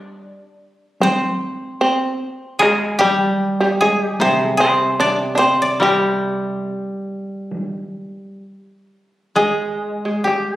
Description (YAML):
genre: japanese traditional, Japanese chamber music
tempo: 64-77 BPM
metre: 4/4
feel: rubato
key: unclear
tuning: A4 = 440 Hz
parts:
  - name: koto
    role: melody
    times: 0.0-10.6 s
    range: G4 to D5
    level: -18 LUFS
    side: left 1 dB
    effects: none
  - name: shamisen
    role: second line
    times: 0.0-10.6 s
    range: G3 to D4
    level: -21 LUFS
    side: right 1 dB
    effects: none
  - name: koto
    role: accompaniment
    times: 0.0-10.6 s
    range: C3 to Ab3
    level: -21 LUFS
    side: left 1 dB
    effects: none
  - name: taiko ensemble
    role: percussion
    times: 1.0-7.7 s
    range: none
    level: -25 LUFS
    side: equal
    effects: none
room: moderate recital hall reverb, RT60 1.5 s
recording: recorded on a phone in the room, studio reverb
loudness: -16 LUFS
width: side -14 dB against mid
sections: 0.0-9.4 A section; 9.4-10.6 B section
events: none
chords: none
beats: 0.21 1.00 1.81 | 2.61 3.40 4.20 5.00 | 5.82 6.65 7.51 8.43 | 9.36 10.24